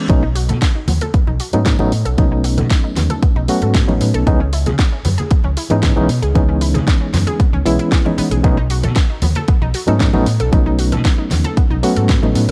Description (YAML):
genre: nu-disco, nu disco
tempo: 115 BPM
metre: 4/4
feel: straight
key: unclear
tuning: A4 = 441 Hz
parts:
  - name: bright reed electric piano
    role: accompaniment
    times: 0.0-12.5 s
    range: E3 to F#4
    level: -20 LUFS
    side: equal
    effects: fast tremolo, analog delay
  - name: analog pluck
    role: arpeggios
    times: 0.1-12.5 s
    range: B3 to A4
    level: -29 LUFS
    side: equal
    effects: chorus, sidechain pumping, tape echo
  - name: overdriven fingered electric bass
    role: bass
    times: 0.1-12.5 s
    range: A1 to C#3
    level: -20 LUFS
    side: equal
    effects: none
  - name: electronic kick drum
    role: drums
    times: 0.1-12.2 s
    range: none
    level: -16 LUFS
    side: equal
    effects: overdrive, studio reverb
  - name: house drum kit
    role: drums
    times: 0.1-12.5 s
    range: hi-hat, snare drum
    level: -27 LUFS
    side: equal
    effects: overdrive, studio reverb
  - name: congas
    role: percussion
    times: 0.1-12.3 s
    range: none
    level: -26 LUFS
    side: equal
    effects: none
room: digital ambience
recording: dry, gritty hardware recording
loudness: -15 LUFS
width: mono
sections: 0.0-12.5 A section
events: none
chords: 0.1 B7; 4.3 C#m7; 8.4 B7